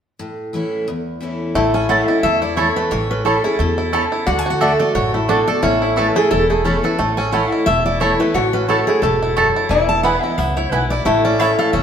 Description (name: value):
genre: bluegrass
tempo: 177 BPM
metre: 4/4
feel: swing 56% on 8ths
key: A major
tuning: A4 = 440 Hz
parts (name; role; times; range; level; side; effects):
- picked steel-string acoustic guitar; accompaniment; 0.2-11.8 s; E2 to F#4; -22 LUFS; left 1 dB; none
- lap resonator guitar; second line; 1.6-11.8 s; E4 to F#4; -21 LUFS; left 2 dB; none
- bluegrass banjo; arpeggios; 1.6-11.8 s; E3 to A4; -22 LUFS; right 2 dB; none
- upright bass; bass; 1.6-11.8 s; E1 to E2; -24 LUFS; equal; none
- picked steel-string acoustic guitar; melody; 1.7-11.8 s; E4 to A5; -20 LUFS; equal; none
- mandolin; stabs; 1.9-11.5 s; A3 to A5; -21 LUFS; right 3 dB; none
room: wet stone room reverb, RT60 1.3 s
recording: band playing live in one room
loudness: -15 LUFS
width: side -8 dB against mid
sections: 0.2-1.6 A section; 1.6-11.8 B section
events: none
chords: 0.2 A; 4.3 D; 5.6 A; 9.7 E; 11.1 A